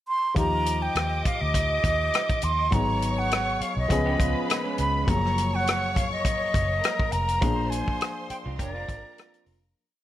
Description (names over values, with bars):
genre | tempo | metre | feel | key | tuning
lush 1970s-style soul | 102 BPM | 4/4 | swing 54% on 16ths | unclear | A4 = 442 Hz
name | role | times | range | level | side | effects
breathy silver concert flute | melody | 0.1-9.4 s | D5 to C6 | -27 LUFS | right 1 dB | none
dark grand piano | accompaniment | 0.3-9.8 s | F3 to Ab4 | -31 LUFS | left 3 dB | none
clear studio string section | second line | 0.4-9.7 s | Bb4 to D6 | -33 LUFS | equal | none
vintage muted fingered electric bass | bass | 0.4-9.7 s | F1 to Eb2 | -29 LUFS | equal | none
warm soul drum kit | drums | 0.4-9.6 s | hi-hat, kick drum, rim click | -27 LUFS | equal | none
electric guitar through a small old amp | riff | 4.1-9.6 s | Ab3 to G4 | -35 LUFS | right 7 dB | wide subtle chorus
room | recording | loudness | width
small room ambience | none | -22 LUFS | side -13 dB against mid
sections
0.0-0.4 pickup bar; 0.4-9.8 verse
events
fade-out 7.4-9.8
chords
0.4 Ebmaj9; 2.7 Abm7; 3.9 Db7; 5.1 Gbmaj9; 7.4 Bb7